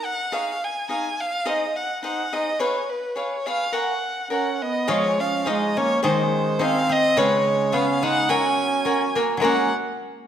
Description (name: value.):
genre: mexican folk, mariachi.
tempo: 106 BPM.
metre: 2/4.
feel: swing 53% on 8ths.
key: F# major.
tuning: A4 = 440 Hz.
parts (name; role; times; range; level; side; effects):
warm violin; melody; 0.0-9.7 s; B4 to G#5; -23 LUFS; equal; none.
cavaquinho; accompaniment; 0.3-9.7 s; D#4 to G#5; -26 LUFS; equal; none.
dark trumpet; second line; 4.3-9.7 s; G#3 to D#4; -26 LUFS; right 3 dB; none.
koto; arpeggios; 4.9-9.7 s; C#3 to D#4; -26 LUFS; left 3 dB; slapback echo.
room: wet recital hall reverb, RT60 1.6 s.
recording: none.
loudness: -20 LUFS.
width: side -9 dB against mid.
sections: 0.0-4.9 A section; 4.9-9.4 B section.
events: none.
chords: 0.3 C#add9; 1.5 G#; 2.6 C#7; 3.7 F#add9; 4.9 C#add9/E#; 6.0 G#; 7.2 C#7; 8.3 F#add9.